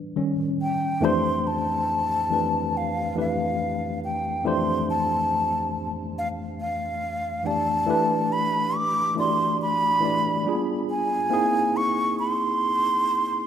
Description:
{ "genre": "R&B", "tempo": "70 BPM", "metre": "4/4", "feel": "swing 58% on 16ths", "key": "unclear", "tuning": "A4 = 438 Hz", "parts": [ { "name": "tine electric piano", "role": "accompaniment", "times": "0.0-13.5 s", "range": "F2 to D5", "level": "-26 LUFS", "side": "left 1 dB", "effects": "overdrive, fast stereo tremolo" }, { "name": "breathy hollow jazz flute", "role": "melody", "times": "0.6-13.5 s", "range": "F5 to D6", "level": "-24 LUFS", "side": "equal", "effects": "none" } ], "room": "moderate lush hall reverb, RT60 3.2 s", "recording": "rough home demo mix", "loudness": "-22 LUFS", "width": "side -9 dB against mid", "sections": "0.0-1.0 A section; 1.0-13.5 B section", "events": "tine electric piano solo 0.0-1.0", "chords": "0.2 Eb7; 1.0 F6; 7.9 Em9; 10.4 G7b9; 11.3 C7alt", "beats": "0.16 | 1.02 1.88 2.73 3.59 | 4.45 5.31 6.16 7.02 | 7.88 8.73 9.59 10.45 | 11.31 12.16 13.02" }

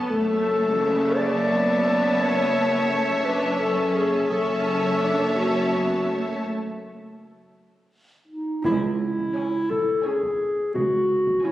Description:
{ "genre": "cinematic, suspense film score", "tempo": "85 BPM", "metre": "3/4", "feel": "straight", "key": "F# minor", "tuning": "A4 = 440 Hz", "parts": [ { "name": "muted symphonic violin section", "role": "melody", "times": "0.0-11.5 s", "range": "G#5 to A5", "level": "-33 LUFS", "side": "left 1 dB", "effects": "none" }, { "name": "muted studio viola section", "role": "accompaniment", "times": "0.0-11.5 s", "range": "C#3 to D4", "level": "-29 LUFS", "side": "equal", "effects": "none" }, { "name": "mellow clarinet", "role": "second line", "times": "0.1-11.5 s", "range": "D#4 to D5", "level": "-23 LUFS", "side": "left 1 dB", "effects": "none" }, { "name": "muted studio violin section", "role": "second line", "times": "0.1-11.5 s", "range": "C#5 to E5", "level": "-29 LUFS", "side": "equal", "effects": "none" }, { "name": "muted studio double bass section", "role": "bass", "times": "0.1-11.3 s", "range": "F#1 to C#2", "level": "-29 LUFS", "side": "right 1 dB", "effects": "none" }, { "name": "muted symphonic cello section", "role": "bass", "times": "0.1-11.3 s", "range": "C#2 to F#2", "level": "-31 LUFS", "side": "right 1 dB", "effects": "none" }, { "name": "taiko ensemble", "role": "drums", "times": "0.1-11.5 s", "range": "none", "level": "-40 LUFS", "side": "equal", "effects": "none" } ], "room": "moderate scoring stage reverb, RT60 2.2 s", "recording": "recorded on a phone in the room, studio reverb, compression", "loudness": "-20 LUFS", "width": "side -14 dB against mid", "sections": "0.0-8.6 A section; 8.6-11.5 B section", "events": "break 6.5-8.6; band accent 8.6-9.4", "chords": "0.0 F#m7; 8.6 C#m", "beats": "| 0.10 0.81 1.52 | 2.21 2.91 3.60 | 4.30 5.01 5.72 | 6.45 7.18 7.91 | 8.65 9.36 10.05 | 10.75 11.44" }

